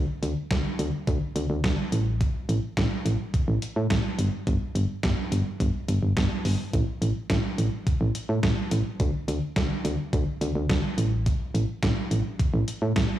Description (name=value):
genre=synth-pop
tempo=106 BPM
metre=4/4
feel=straight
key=unclear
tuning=A4 = 440 Hz
part: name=solid FM bass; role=bass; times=0.0-13.1 s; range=G1 to A2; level=-24 LUFS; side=equal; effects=none
part: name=clean 12-bit digital drum machine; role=drums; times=0.2-13.1 s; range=hi-hat, kick drum, snare drum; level=-27 LUFS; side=equal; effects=overdrive
room=light reverb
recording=blown-out, overdriven recording, overdrive, studio reverb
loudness=-24 LUFS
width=side -13 dB against mid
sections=0.0-13.2 A section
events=none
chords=none